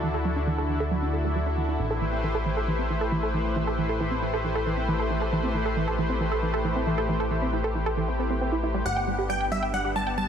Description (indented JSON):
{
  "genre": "trance",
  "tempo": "136 BPM",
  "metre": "4/4",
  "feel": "straight",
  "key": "unclear",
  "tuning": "A4 = 440 Hz",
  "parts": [
    { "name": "lush unison pad", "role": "sustained chords", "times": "0.0-10.3 s", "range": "D3 to C5", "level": "-28 LUFS", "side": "left 1 dB", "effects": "chorus" },
    { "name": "wide unison pluck", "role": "arpeggios", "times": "0.0-10.3 s", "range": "E3 to G5", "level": "-29 LUFS", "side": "right 3 dB", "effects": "tape echo" },
    { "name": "fat analog bass", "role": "bass", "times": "0.0-10.3 s", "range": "G1 to D2", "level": "-30 LUFS", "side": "left 1 dB", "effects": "none" },
    { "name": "supersaw stab", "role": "melody", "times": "8.9-10.3 s", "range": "E5 to A5", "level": "-27 LUFS", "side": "equal", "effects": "tape echo" }
  ],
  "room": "light reverb",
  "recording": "none",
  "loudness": "-24 LUFS",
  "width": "side -8 dB against mid",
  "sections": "0.0-10.3 A section",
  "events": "filter sweep on synth arpeggio sound 0.0-10.3",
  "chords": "0.0 Dadd9; 1.8 Am7; 8.9 G",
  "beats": "| 0.03 0.47 0.91 1.36 | 1.80 2.24 2.68 3.12 | 3.56 4.00 4.44 4.88 | 5.33 5.77 6.21 6.65 | 7.09 7.53 7.97 8.41 | 8.86 9.30 9.74 10.18"
}